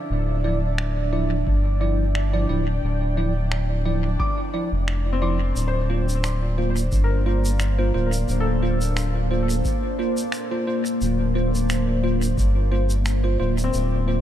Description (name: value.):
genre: ambient dub.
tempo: 88 BPM.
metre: 4/4.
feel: swing 54% on 16ths.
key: unclear.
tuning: A4 = 438 Hz.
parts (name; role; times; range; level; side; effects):
deep dark ambient pad; sustained chords; 0.0-14.2 s; Bb3 to A5; -29 LUFS; left 1 dB; chorus, built-in reverb.
felt-muted upright piano; arpeggios; 0.0-14.2 s; C4 to D6; -32 LUFS; left 4 dB; tape echo.
bubbling stepped-filter texture; texture; 0.0-14.2 s; D4 to D5; -34 LUFS; left 1 dB; chorus, built-in reverb.
warm sub bass; bass; 0.1-14.2 s; D1 to G1; -22 LUFS; equal; tube saturation.
bell-like tine electric piano; stabs; 0.4-14.2 s; F3 to D5; -28 LUFS; right 2 dB; analog chorus, dub echo.
finger snaps and shaker; drums; 0.8-13.9 s; none; -34 LUFS; equal; dub echo.
electronic kick drum; drums; 1.5-12.5 s; none; -26 LUFS; equal; none.
room: small room ambience.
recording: none.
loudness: -20 LUFS.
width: side -11 dB against mid.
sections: 0.0-14.2 A section.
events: none.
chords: 0.0 Dmadd9; 5.6 Bbsus2/D.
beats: | 0.10 0.79 1.47 2.15 | 2.83 3.51 4.20 4.88 | 5.56 6.24 6.92 7.61 | 8.29 8.97 9.65 10.33 | 11.01 11.70 12.38 13.06 | 13.74.